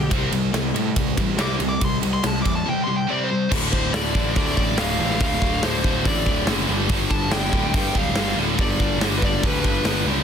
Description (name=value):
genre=hard rock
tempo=142 BPM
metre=4/4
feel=straight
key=unclear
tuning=A4 = 438 Hz
part: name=smooth overdriven lead guitar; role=melody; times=0.0-10.0 s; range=B4 to D6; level=-27 LUFS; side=left 1 dB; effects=tape echo
part: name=scooped high-gain guitar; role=riff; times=0.0-10.2 s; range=D2 to C4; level=-26 LUFS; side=right 13 dB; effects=distortion
part: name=tight distorted guitar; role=riff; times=0.0-10.2 s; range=D2 to C4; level=-26 LUFS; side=left 16 dB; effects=distortion
part: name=fuzz picked electric bass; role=bass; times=0.0-10.2 s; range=D1 to A2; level=-26 LUFS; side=equal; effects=overdrive
part: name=big rock drum kit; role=drums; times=0.1-9.9 s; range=crash cymbal, hi-hat, kick drum, ride cymbal, snare drum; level=-23 LUFS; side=equal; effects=none
room=little or no reverb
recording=dense, heavily limited modern master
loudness=-19 LUFS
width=side -8 dB against mid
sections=0.0-3.5 A section; 3.5-10.2 B section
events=lead electric guitar solo 0.0-3.5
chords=0.1 C5; 3.5 Dm; 6.7 G5